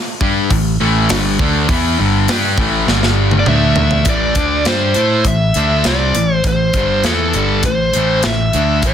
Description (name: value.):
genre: hard rock.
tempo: 101 BPM.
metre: 4/4.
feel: straight.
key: A minor.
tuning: A4 = 441 Hz.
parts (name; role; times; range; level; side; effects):
distorted electric guitar; riff; 0.2-8.9 s; G2 to A4; -18 LUFS; left 12 dB; distortion.
sludgy distorted guitar; riff; 0.2-8.9 s; G2 to A4; -19 LUFS; right 11 dB; overdrive.
modern bright picked electric bass; bass; 0.2-8.9 s; G1 to A2; -19 LUFS; equal; none.
tight metal drum kit; drums; 0.2-8.9 s; hi-hat, kick drum, snare drum, toms; -18 LUFS; equal; soft clipping on kick.
bluesy overdriven lead guitar; melody; 3.4-8.9 s; A4 to E5; -17 LUFS; equal; distortion, slapback echo.
room: moderate studio reverb, RT60 0.8 s.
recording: dense, heavily limited modern master.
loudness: -12 LUFS.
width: side -9 dB against mid.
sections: 0.0-4.1 A section; 4.1-8.9 B section.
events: drum fill 2.9-4.1.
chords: 0.0 A5; 2.9 G5; 3.5 D5; 4.1 Am.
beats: 0.51 1.10 | 1.70 2.29 2.88 3.47 | 4.07 4.66 5.25 5.85 | 6.44 7.04 7.64 8.23 | 8.83.